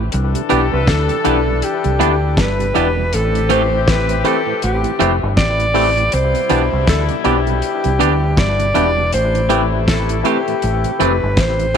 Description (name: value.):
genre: lovers rock reggae.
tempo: 80 BPM.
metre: 4/4.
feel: swing 59% on 16ths.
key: C major.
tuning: A4 = 440 Hz.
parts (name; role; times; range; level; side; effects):
mellow tonewheel organ; accompaniment; 0.0-11.8 s; A2 to G4; -27 LUFS; right 12 dB; slow rotary speaker.
deep dub fingered electric bass; bass; 0.0-11.8 s; E1 to D2; -18 LUFS; equal; none.
warm horn section; second line; 0.1-11.7 s; B2 to A4; -24 LUFS; left 11 dB; none.
damped 70s drum kit; drums; 0.1-11.8 s; hi-hat, kick drum, snare drum; -20 LUFS; equal; none.
breathy alto saxophone; melody; 0.5-11.8 s; G4 to D5; -19 LUFS; equal; tape echo.
barky tine electric piano; accompaniment; 0.5-11.8 s; C4 to B4; -22 LUFS; left 10 dB; overdrive, tape echo.
twangy electric guitar; stabs; 0.5-11.8 s; E3 to G4; -21 LUFS; right 13 dB; none.
room: light reverb, small room reverb.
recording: 1960s-style stereo with parts hard left and right.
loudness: -13 LUFS.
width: side -7 dB against mid.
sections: 0.0-11.8 A section.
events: none.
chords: 0.1 Cmaj9; 3.1 Am7; 6.1 Cmaj9; 9.1 Am7.